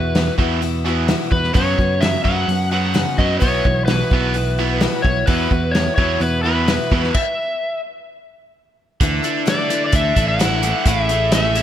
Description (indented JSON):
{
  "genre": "folk rock and heartland rock",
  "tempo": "129 BPM",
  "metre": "4/4",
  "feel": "straight",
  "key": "unclear",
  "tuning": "A4 = 440 Hz",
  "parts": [
    { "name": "overdriven slide guitar", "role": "melody", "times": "0.0-11.6 s", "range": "B4 to F#5", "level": "-21 LUFS", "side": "equal", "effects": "none" },
    { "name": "picked steel-string acoustic guitar", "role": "accompaniment", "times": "0.0-11.6 s", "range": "F#2 to A4", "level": "-25 LUFS", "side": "left 6 dB", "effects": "none" },
    { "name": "overdriven electric guitar", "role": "riff", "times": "0.0-11.6 s", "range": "E2 to E4", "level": "-23 LUFS", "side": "right 3 dB", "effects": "none" },
    { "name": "picked electric bass", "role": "bass", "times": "0.0-11.6 s", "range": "A1 to F#2", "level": "-21 LUFS", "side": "equal", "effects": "none" },
    { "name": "natural country drum kit", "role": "drums", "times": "0.2-11.6 s", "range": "crash cymbal, hi-hat, kick drum, snare drum", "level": "-20 LUFS", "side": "equal", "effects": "gated reverb" }
  ],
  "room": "light reverb",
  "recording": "bright 1980s-style digital production",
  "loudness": "-15 LUFS",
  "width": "side -10 dB against mid",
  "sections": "0.0-9.0 A section; 9.0-11.6 B section",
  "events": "stop 7.1-9.0",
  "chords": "0.0 Esus2; 1.6 F#sus4; 3.4 Bsus4; 5.3 Esus2; 9.0 Dsus2; 10.9 Amaj7",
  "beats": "0.16 0.62 1.09 | 1.56 2.02 2.49 2.96 | 3.42 3.89 4.35 4.82 | 5.28 5.75 6.21 6.68 | 7.14 7.61 8.08 8.54 | 9.01 9.47 9.94 10.40 | 10.87 11.33"
}